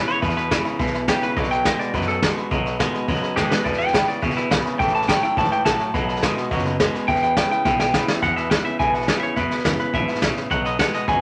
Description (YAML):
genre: rockabilly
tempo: 210 BPM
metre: 4/4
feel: straight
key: E major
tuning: A4 = 440 Hz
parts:
  - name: clean electric guitar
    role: melody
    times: 0.0-11.2 s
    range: E4 to A5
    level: -25 LUFS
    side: equal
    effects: spring reverb
  - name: picked steel-string acoustic guitar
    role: accompaniment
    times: 0.0-11.2 s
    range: E2 to F#4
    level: -35 LUFS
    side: equal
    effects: none
  - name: warm upright piano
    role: accompaniment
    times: 0.0-11.2 s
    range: D#5 to E6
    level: -34 LUFS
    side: equal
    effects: none
  - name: twangy electric guitar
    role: riff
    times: 0.0-11.2 s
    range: E2 to G#3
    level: -27 LUFS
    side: equal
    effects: spring reverb
  - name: upright bass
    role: bass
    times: 0.1-11.2 s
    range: F#1 to F#2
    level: -32 LUFS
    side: equal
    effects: none
  - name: vintage brush drum kit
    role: drums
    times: 0.1-11.1 s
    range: hi-hat, kick drum, snare drum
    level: -26 LUFS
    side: equal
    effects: none
room: wet studio ambience, RT60 0.5 s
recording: none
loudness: -21 LUFS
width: mono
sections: 0.0-8.2 A section; 8.2-11.2 B section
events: clean electric guitar solo 0.0-8.2; drum fill 3.4, 7.7-8.2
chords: 0.0 E; 1.4 B7; 3.7 E; 4.8 A; 5.9 B7; 7.1 E; 10.5 B7